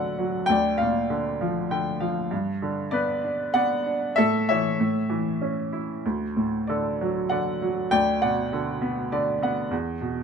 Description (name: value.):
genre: classical, lyrical solo piano.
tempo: 98 BPM.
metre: 3/4.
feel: rubato.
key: D major.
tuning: A4 = 440 Hz.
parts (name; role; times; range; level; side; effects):
clear baby grand piano; solo; 0.0-10.2 s; D2 to G5; -23 LUFS; equal; none.
room: light reverb.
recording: none.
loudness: -23 LUFS.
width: side -6 dB against mid.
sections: 0.0-10.2 A section.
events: grand piano fill 1.4-2.3, 8.8-9.7.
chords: 0.5 Bb/D; 2.3 G; 4.2 A; 6.0 D; 7.9 D6; 9.7 E5.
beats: | 0.49 1.10 1.70 | 2.31 2.93 3.54 | 4.16 4.78 5.40 | 6.04 6.67 7.30 | 7.91 8.52 9.12 | 9.72.